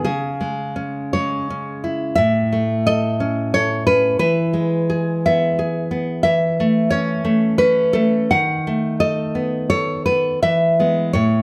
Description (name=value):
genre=romantic piece for solo classical guitar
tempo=87 BPM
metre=3/4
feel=uneven beats, rubato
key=E major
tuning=A4 = 444 Hz
part: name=nylon-string guitar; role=solo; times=0.0-11.4 s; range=A2 to F#5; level=-19 LUFS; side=equal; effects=none
room=moderate recital hall reverb, RT60 1.4 s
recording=close, detailed microphones, faint mains hum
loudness=-19 LUFS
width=mono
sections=0.0-11.4 A section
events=none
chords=0.0 C#m; 2.2 A; 4.2 E; 6.2 Aadd9/E; 8.3 B7/D#; 10.4 E